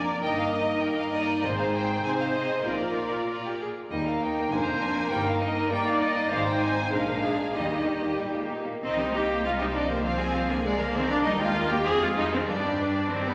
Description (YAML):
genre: quick classical-period movement for symphony orchestra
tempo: 98 BPM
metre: 2/4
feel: straight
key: Eb major, C minor from 8.8 s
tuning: A4 = 440 Hz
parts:
  - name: mellow clarinet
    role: second line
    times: 0.0-8.5 s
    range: D4 to F4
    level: -36 LUFS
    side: equal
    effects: none
  - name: rich chamber violin section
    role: second line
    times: 0.0-13.3 s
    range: G3 to Ab5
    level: -33 LUFS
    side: equal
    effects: none
  - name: mellow bassoon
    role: accompaniment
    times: 0.0-8.5 s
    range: G3 to C4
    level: -38 LUFS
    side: equal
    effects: none
  - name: rich chamber viola section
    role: accompaniment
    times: 0.0-13.3 s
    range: Ab3 to Eb5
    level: -32 LUFS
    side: equal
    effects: none
  - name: warm French horn section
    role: sustained chords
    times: 0.0-8.8 s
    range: G3 to F4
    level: -36 LUFS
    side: equal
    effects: none
  - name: clear chamber double bass section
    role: bass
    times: 0.0-13.3 s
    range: F1 to G2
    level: -39 LUFS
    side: equal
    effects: none
  - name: rich studio cello section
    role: bass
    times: 0.0-13.3 s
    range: Eb2 to C4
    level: -37 LUFS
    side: equal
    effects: none
  - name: clear chamber violin section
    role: melody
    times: 0.2-13.3 s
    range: Ab4 to Bb5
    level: -36 LUFS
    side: equal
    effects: none
room: wet scoring stage reverb, RT60 1.9 s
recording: none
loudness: -27 LUFS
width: mono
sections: 0.0-8.8 A section; 8.8-13.3 B section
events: none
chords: 0.2 Eb/G; 1.4 Ab; 2.7 Bb; 3.9 Eb; 4.5 Bb7/F; 5.1 Eb/G; 6.3 Ab; 6.9 Bb7; 7.6 Eb; 8.8 Cm; 10.0 Fm/C; 10.6 Bb7/C; 11.3 Eb; 11.9 Fm; 12.5 G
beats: | 0.23 0.83 | 1.44 2.04 | 2.66 3.28 | 3.91 4.52 | 5.12 5.71 | 6.32 6.93 | 7.56 8.20 | 8.83 9.44 | 10.04 10.65 | 11.25 11.86 | 12.48 13.10